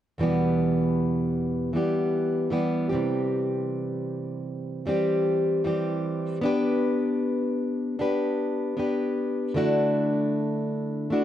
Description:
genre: pop.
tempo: 77 BPM.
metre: 4/4.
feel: swing 55% on 16ths.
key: E minor.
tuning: A4 = 440 Hz.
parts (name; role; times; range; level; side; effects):
fingerpicked plugged-in steel-string acoustic guitar; accompaniment; 0.2-11.2 s; E2 to B4; -23 LUFS; equal; none.
room: light reverb.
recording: dark, warm production.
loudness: -24 LUFS.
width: side -11 dB against mid.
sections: 0.2-11.2 A section.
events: none.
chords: 0.2 Em; 2.9 C; 6.4 G/B; 9.6 Dadd9.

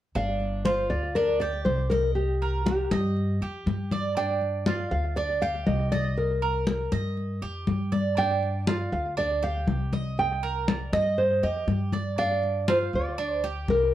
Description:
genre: latin, Cuban son and guajira.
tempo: 120 BPM.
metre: 4/4.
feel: straight.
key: G minor.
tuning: A4 = 440 Hz.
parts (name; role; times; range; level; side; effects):
nylon-string guitar; melody; 0.2-13.9 s; G4 to G5; -27 LUFS; equal; slapback echo.
Cuban tres; arpeggios; 0.2-13.9 s; D4 to Eb5; -31 LUFS; right 5 dB; none.
upright bass; bass; 0.2-13.9 s; G1 to G2; -29 LUFS; equal; none.
congas; percussion; 0.2-13.9 s; none; -29 LUFS; left 4 dB; none.
room: light reverb.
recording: worn, warbling old tape, cassette tape, warbly pitch drift.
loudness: -24 LUFS.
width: side -12 dB against mid.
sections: 0.2-13.9 A section.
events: none.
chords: 0.2 G5; 2.2 Cm7; 4.2 G5; 6.2 Cm7; 8.2 G5; 10.2 Cm7; 12.2 G7(no3).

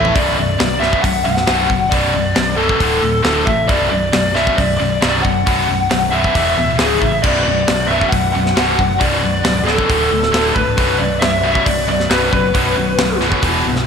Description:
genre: hard rock.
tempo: 136 BPM.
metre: 4/4.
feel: straight.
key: B minor.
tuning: A4 = 443 Hz.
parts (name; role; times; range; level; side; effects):
lead guitar through a small cranked amp; melody; 0.0-13.2 s; G#4 to F#5; -17 LUFS; left 1 dB; overdrive, slapback echo, digital delay.
overdriven tonewheel organ; sustained chords; 0.0-0.2, 7.2-13.9 s; E3 to E5; -28 LUFS; right 1 dB; none.
heavy high-gain guitar; riff; 0.0-13.9 s; B1 to A3; -20 LUFS; left 9 dB; distortion.
scooped high-gain guitar; riff; 0.0-13.8 s; B1 to A3; -21 LUFS; right 10 dB; distortion.
picked electric bass; bass; 0.0-13.8 s; B0 to A1; -23 LUFS; right 1 dB; none.
tight metal drum kit; drums; 0.0-13.8 s; crash cymbal, hi-hat, kick drum, snare drum, toms; -19 LUFS; equal; none.
room: moderate lush hall reverb, RT60 1.8 s, small room ambience.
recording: big arena sound.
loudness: -13 LUFS.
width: side -6 dB against mid.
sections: 0.2-13.9 A section.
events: drum fill 0.0.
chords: 0.2 Bm; 2.8 D5; 3.7 Bm; 6.3 E5; 6.8 C#5; 7.2 Bm; 9.9 D5; 10.8 B5; 13.4 E5.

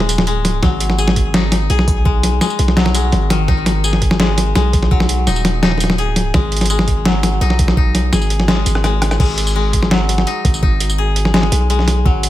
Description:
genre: half-time drum and bass.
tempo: 168 BPM.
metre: 4/4.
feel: half-time.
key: G# minor.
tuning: A4 = 440 Hz.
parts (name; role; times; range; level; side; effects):
koto; arpeggios; 0.0-12.3 s; D#3 to G#4; -20 LUFS; left 4 dB; digital delay.
long sustained 808-style bass; bass; 0.0-12.3 s; D#1 to B1; -16 LUFS; equal; none.
boom bap sampler-style drum kit; drums; 0.0-12.3 s; crash cymbal, hi-hat, rim click, snare drum, tambourine; -17 LUFS; equal; studio reverb.
electronic kick drum; drums; 0.6-12.1 s; none; -16 LUFS; equal; studio reverb.
room: digital ambience.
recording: none.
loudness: -12 LUFS.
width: side -14 dB against mid.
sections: 0.0-9.2 A section; 9.2-12.3 A section.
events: drop 0.0-9.2, 9.2-12.3; kick drops out 8.5-9.2; drum fill 8.5-9.2.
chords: 0.0 G#5.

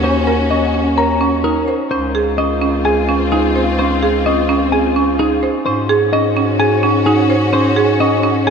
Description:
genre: classical, minimalist pattern music.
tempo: 128 BPM.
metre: 4/4.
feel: straight.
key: Db major.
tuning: A4 = 440 Hz.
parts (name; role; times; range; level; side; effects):
clean electric guitar; melody; 0.0-8.5 s; Ab4 to Bb5; -20 LUFS; left 7 dB; none.
clear studio string section; sustained chords; 0.0-8.5 s; C4 to Gb4; -20 LUFS; left 2 dB; none.
buzzing marimba with hard mallets; arpeggios; 0.0-8.5 s; Db4 to C5; -16 LUFS; right 4 dB; none.
mellow bass clarinet; bass; 0.0-8.5 s; Db2 to Ab2; -19 LUFS; left 1 dB; none.
room: wet cathedral reverb, RT60 7.1 s.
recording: in a vast, echoing space.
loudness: -12 LUFS.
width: side -6 dB against mid.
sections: 0.0-8.5 A section.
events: none.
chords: 0.0 Ebm7; 1.9 Dbmaj7; 5.7 Ab7sus4.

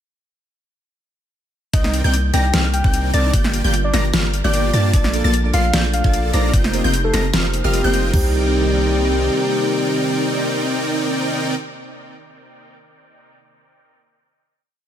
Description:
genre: future bass.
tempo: 150 BPM.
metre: 4/4.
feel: swing 54% on 16ths, half-time.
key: C dorian.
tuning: A4 = 440 Hz.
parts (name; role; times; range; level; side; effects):
soft octave-layered synth lead; melody; 1.7-11.5 s; G4 to G5; -24 LUFS; left 2 dB; chorus, sidechain pumping, ping-pong delay.
airy breathy pad; sustained chords; 1.7-11.5 s; C3 to D5; -31 LUFS; equal; chorus, sidechain pumping.
wide unison pluck; arpeggios; 1.7-11.5 s; F6 to C7; -27 LUFS; equal; sidechain pumping, dub echo.
dense compressed supersaw; riff; 1.7-11.5 s; Bb3 to C6; -22 LUFS; equal; sidechain pumping.
long sustained 808-style bass; bass; 1.7-9.3 s; F1 to G2; -19 LUFS; equal; sidechain pumping.
dubstep drum kit; drums; 1.7-8.0 s; hi-hat, snare drum; -23 LUFS; left 1 dB; overdrive.
trap drum kit; drums; 1.7-8.2 s; crash cymbal, kick drum, toms; -18 LUFS; equal; none.
glassy digital keys; accompaniment; 5.1-11.6 s; Bb3 to D5; -28 LUFS; right 4 dB; chorus, sidechain pumping, dub echo.
room: digital ambience.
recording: none.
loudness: -15 LUFS.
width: side -10 dB against mid.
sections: 1.7-8.1 drop; 8.1-11.3 final chord.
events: drop 1.7-8.1.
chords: 1.7 Cm9; 3.3 Gm7; 4.9 Bbmaj7; 6.5 F9sus4; 8.1 Cm9.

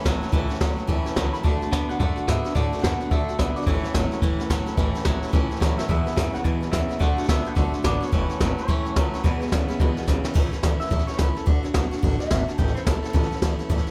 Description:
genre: rockabilly.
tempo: 216 BPM.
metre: 4/4.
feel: swing 62% on 8ths.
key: A major.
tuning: A4 = 438 Hz.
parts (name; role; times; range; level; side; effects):
picked steel-string acoustic guitar; accompaniment; 0.0-13.9 s; E2 to F#4; -33 LUFS; equal; none.
twangy electric guitar; riff; 0.0-10.3 s; E2 to B3; -31 LUFS; equal; none.
jazz brush drum kit; drums; 0.0-13.9 s; crash cymbal, hi-hat, kick drum, snare drum; -26 LUFS; equal; none.
upright bass; bass; 0.1-13.9 s; E1 to A2; -29 LUFS; equal; none.
electric guitar through a small old amp; melody; 1.3-13.8 s; F#4 to B5; -34 LUFS; equal; subtle chorus, tape echo.
room: light reverb, studio ambience.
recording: none.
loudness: -23 LUFS.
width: mono.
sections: 0.0-10.4 A section; 10.4-13.9 B section.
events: drum fill 5.8, 10.1; clean electric guitar solo 10.4-13.9.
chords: 0.0 A; 1.4 D; 3.7 A; 5.9 E; 7.0 D; 8.1 A; 9.2 E; 10.4 A; 11.5 D; 12.6 A.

